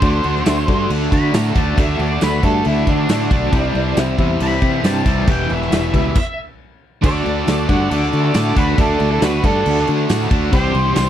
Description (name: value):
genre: classic rock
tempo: 137 BPM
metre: 4/4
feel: straight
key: unclear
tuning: A4 = 440 Hz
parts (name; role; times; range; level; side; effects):
- octave-fuzz lead guitar; melody; 0.0-11.1 s; D4 to B5; -22 LUFS; right 1 dB; distortion, slapback echo
- bright reed electric piano; accompaniment; 0.0-11.1 s; C4 to E5; -26 LUFS; left 5 dB; fast tremolo
- crunchy overdriven guitar; riff; 0.0-11.1 s; E2 to G4; -22 LUFS; left 1 dB; tremolo
- tight distorted guitar; riff; 0.0-11.1 s; E2 to D4; -23 LUFS; right 1 dB; distortion
- fingered electric bass; bass; 0.0-11.1 s; E1 to D3; -20 LUFS; equal; none
- huge arena drum kit; drums; 0.0-11.1 s; crash cymbal, kick drum, snare drum; -20 LUFS; equal; none
- tambourine; percussion; 0.5-11.1 s; none; -37 LUFS; right 8 dB; none
- octave-fuzz lead guitar; second line; 7.0-11.1 s; D4 to D5; -27 LUFS; right 4 dB; distortion
room: little or no reverb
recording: dry, close 1970s-style studio recording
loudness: -14 LUFS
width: side -10 dB against mid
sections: 0.0-7.0 A section; 7.0-11.1 B section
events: lead electric guitar solo 0.0-7.0; stop 6.2-7.0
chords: 0.0 D; 3.5 C; 5.3 Em; 7.0 D; 10.5 C